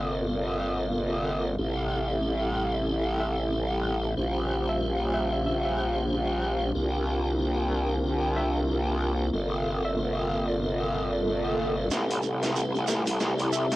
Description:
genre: glitch hop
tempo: 93 BPM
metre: 4/4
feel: swing 59% on 16ths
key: A phrygian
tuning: A4 = 440 Hz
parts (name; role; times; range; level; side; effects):
- warm analog pad; sustained chords; 0.0-13.8 s; C3 to F4; -33 LUFS; equal; chorus, cassette tape
- tonewheel organ; stabs; 0.0-13.8 s; C4 to C5; -30 LUFS; equal; overdrive, chorus vibrato, fast rotary speaker, low-pass filter, cassette tape, tape echo
- growl bass; bass; 0.0-13.8 s; G1 to C2; -28 LUFS; equal; chorus, high-pass filter
- woody wave-folded pluck; melody; 3.2-13.8 s; E5; -35 LUFS; equal; chorus, cassette tape, tape echo
- swell; sound effects; 10.9-11.9 s; none; -33 LUFS; right 2 dB; none
- boom bap sampler-style drum kit; drums; 11.9-13.8 s; hi-hat, snare drum; -31 LUFS; equal; overdrive, high-pass filter on snare, low-pass filter on snare, cassette tape, high-pass filter on hats, low-pass filter on hats
- shekere; percussion; 11.9-13.8 s; none; -36 LUFS; right 8 dB; none
room: light reverb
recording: home recording on cassette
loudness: -25 LUFS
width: side -17 dB against mid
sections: 0.0-11.9 A section; 11.9-13.8 B section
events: swell 10.9-11.9; build-up 11.9-13.8; drum fill 11.9-13.8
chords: 0.0 Gm11; 1.6 Am7; 4.2 Bbm6; 6.8 C9sus4; 9.3 Gm11; 11.9 Am7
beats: 0.30 0.95 | 1.59 2.24 2.88 3.53 | 4.17 4.82 5.46 6.11 | 6.75 7.40 8.04 8.69 | 9.33 9.98 10.62 11.27 | 11.91 12.56 13.21

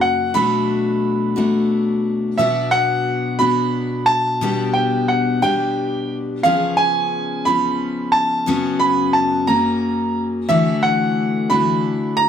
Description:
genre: acoustic folk duo or small band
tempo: 59 BPM (dotted quarters)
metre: 6/8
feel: straight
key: B minor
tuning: A4 = 440 Hz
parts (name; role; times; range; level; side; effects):
- bright upright piano; melody; 0.0-12.3 s; E5 to B5; -18 LUFS; right 2 dB; plate reverb
- picked steel-string acoustic guitar; accompaniment; 0.0-12.3 s; F#2 to G#4; -19 LUFS; left 3 dB; none
room: moderate small room reverb, RT60 0.6 s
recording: none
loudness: -16 LUFS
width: side -8 dB against mid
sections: 0.0-2.4 A section; 2.4-12.3 B section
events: none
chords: 0.3 Bm7; 2.4 Bm; 4.4 G/B; 6.4 C#7; 8.5 F#sus4; 9.5 F#; 10.5 Dadd9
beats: | 0.35 1.37 | 2.38 3.40 | 4.42 5.43 | 6.45 7.46 | 8.47 9.48 | 10.49 11.50

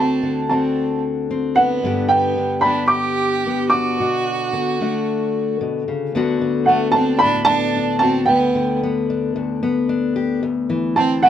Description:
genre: folk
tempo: 112 BPM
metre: 4/4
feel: straight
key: D mixolydian from 6.1 s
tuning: A4 = 440 Hz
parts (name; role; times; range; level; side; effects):
- dark upright piano; melody; 0.0-11.3 s; F#5 to D6; -18 LUFS; right 2 dB; none
- clear fiddle; second line; 0.0-11.3 s; A3 to G4; -22 LUFS; right 4 dB; none
- fingerpicked steel-string acoustic guitar; accompaniment; 0.0-11.3 s; D2 to G4; -20 LUFS; left 4 dB; none
room: moderate studio reverb, RT60 0.5 s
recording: none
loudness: -16 LUFS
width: side -10 dB against mid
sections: 0.0-6.1 A section; 6.1-11.3 B section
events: none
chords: 0.0 D7; 1.8 G; 4.0 Bm7; 6.1 D6; 8.3 G/D; 10.4 Am/D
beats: 0.23 0.76 1.30 | 1.84 2.38 2.92 3.46 | 4.00 4.53 5.07 5.61 | 6.14 6.68 7.22 7.75 | 8.29 8.82 9.36 9.89 | 10.43 10.97

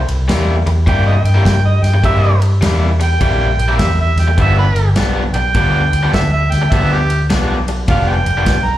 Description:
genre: electric blues shuffle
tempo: 103 BPM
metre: 4/4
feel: swing 65% on 8ths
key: unclear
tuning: A4 = 439 Hz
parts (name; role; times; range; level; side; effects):
- mellow harmonica; second line; 0.0-8.8 s; G4 to Bb5; -19 LUFS; right 3 dB; slapback echo
- vintage muted fingered electric bass; bass; 0.0-8.8 s; F1 to G2; -14 LUFS; equal; none
- vintage drum kit; drums; 0.1-8.6 s; kick drum, ride cymbal, snare drum; -20 LUFS; equal; none
- raw garage guitar; riff; 0.3-8.5 s; G2 to E4; -19 LUFS; left 3 dB; overdrive, spring reverb, slapback echo
room: little or no reverb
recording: live gig heard through the venue's PA, club reverb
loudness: -11 LUFS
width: side -13 dB against mid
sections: 0.0-8.8 A section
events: harmonica solo 0.0-8.8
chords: 0.0 C7; 4.4 G7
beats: 0.28 0.87 1.45 | 2.04 2.62 3.21 3.79 | 4.38 4.96 5.54 6.13 | 6.71 7.30 7.88 8.47

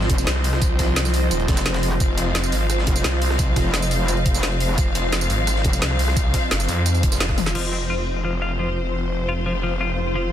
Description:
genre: dark technical drum and bass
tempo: 173 BPM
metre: 4/4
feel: straight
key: unclear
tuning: A4 = 436 Hz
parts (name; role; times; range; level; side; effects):
- rich studio string section; sustained chords; 0.0-10.3 s; F3 to F5; -28 LUFS; left 3 dB; sidechain pumping
- snarling distorted saw bass; bass; 0.0-10.3 s; Eb1 to F2; -22 LUFS; equal; distortion, tube saturation, sidechain pumping
- breakbeat sampler-style drum kit; drums; 0.0-7.5 s; hi-hat, snare drum; -32 LUFS; equal; high-pass filter on snare, small room reverb, high-pass filter on hats, high-pass filter on room
- granular cloud pad; texture; 0.0-10.3 s; F4 to F5; -28 LUFS; right 1 dB; built-in reverb, sidechain pumping
- metallic wobble bass; bass; 0.1-5.8 s; F1; -23 LUFS; equal; chorus
- drum and bass drum kit; drums; 0.1-7.6 s; crash cymbal, hi-hat, rim click, snare drum, tambourine, toms; -25 LUFS; equal; overdrive, small room reverb
- electronic kick drum; drums; 0.1-7.4 s; none; -21 LUFS; equal; overdrive, small room reverb
- twelve-string electric guitar; arpeggios; 7.6-10.2 s; F3 to F4; -28 LUFS; left 2 dB; sidechain pumping, low-pass filter, ping-pong delay
room: light reverb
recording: dense, heavily limited modern master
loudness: -18 LUFS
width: side -10 dB against mid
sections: 0.0-7.6 A section; 7.6-10.3 B section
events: drop 0.0-7.6; band accent 7.2; drum fill 7.4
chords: 0.0 F5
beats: 0.27 | 0.62 0.96 1.31 1.66 | 2.00 2.35 2.70 3.04 | 3.39 3.74 4.08 4.43 | 4.78 5.12 5.47 5.82 | 6.17 6.51 6.86 7.21 | 7.55 7.90 8.25 8.59 | 8.94 9.29 9.63 9.98

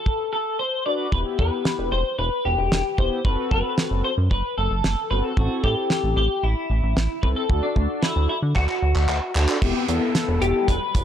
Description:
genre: synth-pop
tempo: 113 BPM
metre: 4/4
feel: straight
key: E minor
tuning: A4 = 439 Hz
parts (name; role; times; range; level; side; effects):
- twelve-string electric guitar; melody; 0.0-11.0 s; D4 to D5; -24 LUFS; left 2 dB; analog chorus
- damped 70s drum kit; drums; 0.1-11.0 s; crash cymbal, handclaps, hi-hat, kick drum, snare drum; -23 LUFS; right 1 dB; none
- mellow synth brass; accompaniment; 0.9-10.7 s; B3 to B4; -27 LUFS; left 2 dB; chorus
- chorused synth bass; bass; 1.1-11.0 s; E1 to D3; -22 LUFS; equal; none
- downlifter; sound effects; 9.6-11.0 s; none; -31 LUFS; equal; none
room: small room ambience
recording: dry, gritty hardware recording, transformer saturation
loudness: -20 LUFS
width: side -9 dB against mid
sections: 0.0-9.6 A section; 9.6-11.0 B section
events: silent gap 0.6-1.1; drum fill 8.6-9.6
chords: 0.0 D; 1.1 Em; 3.2 F#dim; 5.4 Am; 7.5 D; 9.6 Em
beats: 0.06 0.59 | 1.12 1.66 2.19 2.72 | 3.25 3.78 4.31 4.84 | 5.37 5.90 6.43 6.96 | 7.50 8.03 8.56 9.09 | 9.62 10.15 10.68

